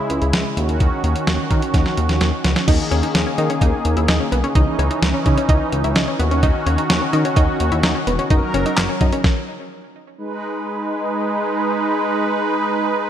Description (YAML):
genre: synth-pop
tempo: 128 BPM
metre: 4/4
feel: straight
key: G# minor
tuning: A4 = 440 Hz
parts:
  - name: brassy analog pad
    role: sustained chords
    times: 0.0-13.1 s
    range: C#3 to B4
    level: -21 LUFS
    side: right 1 dB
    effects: chorus
  - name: chorused synth bass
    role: bass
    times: 0.1-9.1 s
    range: E1 to D#3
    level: -20 LUFS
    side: equal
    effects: none
  - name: clean 12-bit digital drum machine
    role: drums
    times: 0.1-9.4 s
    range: crash cymbal, handclaps, hi-hat, kick drum, snare drum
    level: -19 LUFS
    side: equal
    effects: none
  - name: analog pluck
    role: arpeggios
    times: 2.7-9.2 s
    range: B3 to E4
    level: -23 LUFS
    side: left 1 dB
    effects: chorus, ping-pong delay
room: moderate lush hall reverb, RT60 1.9 s, digital ambience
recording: bright 1980s-style digital production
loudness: -16 LUFS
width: side -10 dB against mid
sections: 0.0-2.7 A section; 2.7-10.2 B section; 10.2-13.1 C section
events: drum fill 1.7-2.7; stop 9.2-10.2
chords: 0.0 C#m; 0.6 D#m7; 2.7 D#sus4; 4.6 C#madd9; 6.2 D#m7; 8.3 F#; 10.2 G#m